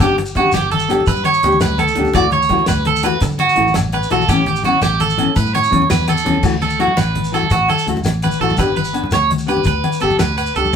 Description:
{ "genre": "highlife guitar band", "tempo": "112 BPM (dotted quarters)", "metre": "12/8", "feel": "straight", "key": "D major", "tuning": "A4 = 438 Hz", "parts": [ { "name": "nylon-string guitar", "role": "accompaniment", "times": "0.0-10.8 s", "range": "E3 to G4", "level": "-19 LUFS", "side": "left 5 dB", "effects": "none" }, { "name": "electric guitar at the edge of break-up", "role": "arpeggios", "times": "0.0-10.7 s", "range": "F#4 to D5", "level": "-16 LUFS", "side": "right 4 dB", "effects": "none" }, { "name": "fingered electric bass", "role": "bass", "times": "0.0-10.7 s", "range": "G1 to D3", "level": "-22 LUFS", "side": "equal", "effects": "none" }, { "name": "damped 70s drum kit", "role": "drums", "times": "0.0-10.8 s", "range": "crash cymbal, hi-hat, kick drum, snare drum", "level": "-22 LUFS", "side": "equal", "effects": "none" }, { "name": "agogo bells", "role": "percussion", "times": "0.0-10.6 s", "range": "none", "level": "-28 LUFS", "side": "left 2 dB", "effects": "none" }, { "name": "congas", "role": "percussion", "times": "0.0-10.7 s", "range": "none", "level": "-23 LUFS", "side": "left 3 dB", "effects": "none" }, { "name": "shekere", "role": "percussion", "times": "0.3-10.8 s", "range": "none", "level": "-26 LUFS", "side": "left 1 dB", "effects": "none" } ], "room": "moderate studio reverb, RT60 0.5 s", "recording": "band playing live in one room", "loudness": "-13 LUFS", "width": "side -7 dB against mid", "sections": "0.0-6.4 A section; 6.4-10.8 B section", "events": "none", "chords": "0.0 G; 2.1 Dadd9; 4.3 Aadd9; 6.4 Dadd9; 8.6 G", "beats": "| 0.00 0.54 1.08 1.61 | 2.15 2.69 3.22 3.76 | 4.29 4.83 5.37 5.90 | 6.44 6.97 7.51 8.05 | 8.58 9.12 9.66 10.20 | 10.73" }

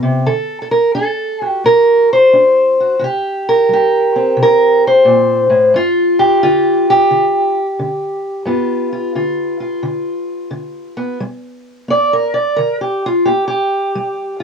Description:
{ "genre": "acoustic country blues, solo or duo", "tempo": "88 BPM", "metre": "4/4", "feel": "swing 66% on 8ths", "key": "G mixolydian", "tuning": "A4 = 440 Hz", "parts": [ { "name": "fingerpicked steel-string acoustic guitar", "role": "solo", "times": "0.0-14.4 s", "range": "G2 to D5", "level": "-12 LUFS", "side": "equal", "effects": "none" } ], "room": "moderate booth ambience, RT60 0.2 s", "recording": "worn, warbling old tape, cassette tape, warbly pitch drift", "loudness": "-11 LUFS", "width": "side -6 dB against mid", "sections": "0.0-11.2 A section; 11.2-14.4 B section", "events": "steel-string acoustic guitar solo 11.2-14.4", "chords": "0.3 D7; 3.0 C5; 5.7 G7; 11.2 G", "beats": "| 0.27 0.95 1.63 2.32 | 3.00 3.68 4.36 5.05 | 5.73 6.41 7.10 7.78 | 8.47 9.15 9.84 10.52 | 11.20 11.89 12.57 13.26 | 13.95" }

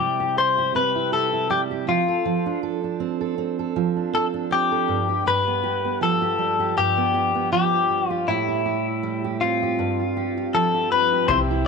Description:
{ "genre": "acoustic pop", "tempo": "80 BPM", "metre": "4/4", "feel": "swing 55% on 16ths", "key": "unclear", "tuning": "A4 = 440 Hz", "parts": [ { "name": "direct-recorded clean electric guitar", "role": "melody", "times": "0.0-11.4 s", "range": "E4 to C5", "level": "-21 LUFS", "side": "left 6 dB", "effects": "lush chorus" }, { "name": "fingerpicked steel-string acoustic guitar", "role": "accompaniment", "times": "0.0-11.7 s", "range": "G2 to A4", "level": "-25 LUFS", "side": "right 8 dB", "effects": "none" }, { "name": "bright concert grand piano", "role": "accompaniment", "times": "11.3-11.7 s", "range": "C4 to E5", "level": "-28 LUFS", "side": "left 16 dB", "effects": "none" }, { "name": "upright bass", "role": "bass", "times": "11.3-11.7 s", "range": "C2", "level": "-24 LUFS", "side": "left 2 dB", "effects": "none" }, { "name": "kick drum", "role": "drums", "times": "11.3-11.5 s", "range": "none", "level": "-33 LUFS", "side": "left 2 dB", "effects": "none" } ], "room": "light reverb, small room ambience", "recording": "1960s-style stereo with parts hard left and right", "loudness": "-20 LUFS", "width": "side -4 dB against mid", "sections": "0.0-11.3 A section", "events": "none", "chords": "0.0 C; 1.9 F6; 4.9 G7; 8.3 Am7; 9.8 G7sus4", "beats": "0.74 1.50 | 2.25 3.00 3.76 4.51 | 5.26 6.01 6.77 7.52 | 8.28 9.03 9.78 10.53 | 11.29" }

